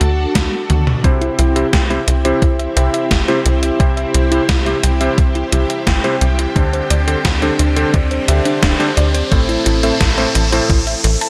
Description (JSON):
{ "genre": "synthwave", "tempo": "87 BPM", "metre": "4/4", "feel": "straight", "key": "unclear", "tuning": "A4 = 444 Hz", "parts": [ { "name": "expressive portamento lead", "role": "melody", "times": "0.0-0.7 s", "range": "F#4", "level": "-30 LUFS", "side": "equal", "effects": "subtle chorus, delay" }, { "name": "string machine, full ensemble", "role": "sustained chords", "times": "0.0-11.3 s", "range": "C4 to A4", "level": "-24 LUFS", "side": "equal", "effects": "ensemble chorus, sidechain pumping" }, { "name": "tight sequencer bass", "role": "bass", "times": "0.0-11.2 s", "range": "D1 to D2", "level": "-19 LUFS", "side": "equal", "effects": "sidechain pumping" }, { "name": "gated 80s digital drum machine", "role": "drums", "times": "0.0-11.3 s", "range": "hi-hat, snare drum, toms", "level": "-22 LUFS", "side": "equal", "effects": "gated reverb, gated reverb snare, high-pass filter on hats, high-pass filter on snare, high-pass filter on toms, high-pass filter on room" }, { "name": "electronic kick drum", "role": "drums", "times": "0.4-10.8 s", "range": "none", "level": "-18 LUFS", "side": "equal", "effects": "none" }, { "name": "warm electric grand piano", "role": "stabs", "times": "1.0-10.7 s", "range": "A2 to E5", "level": "-22 LUFS", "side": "equal", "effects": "low-pass filter, tape echo" }, { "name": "riser", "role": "sound effects", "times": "4.2-11.3 s", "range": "none", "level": "-28 LUFS", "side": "equal", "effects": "none" }, { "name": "thumb-piano-like synth pluck", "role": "arpeggios", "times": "1.2-11.3 s", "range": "D4 to A5", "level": "-25 LUFS", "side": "equal", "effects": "chorus, tape echo" } ], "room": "moderate lush hall reverb, RT60 1.9 s", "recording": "none", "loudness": "-15 LUFS", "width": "mono", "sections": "0.0-1.0 A section; 1.0-11.3 B section", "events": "drum fill 0.7-1.0; riser 4.2-11.3", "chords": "0.0 D; 1.0 C; 6.6 D7sus4; 9.3 Am" }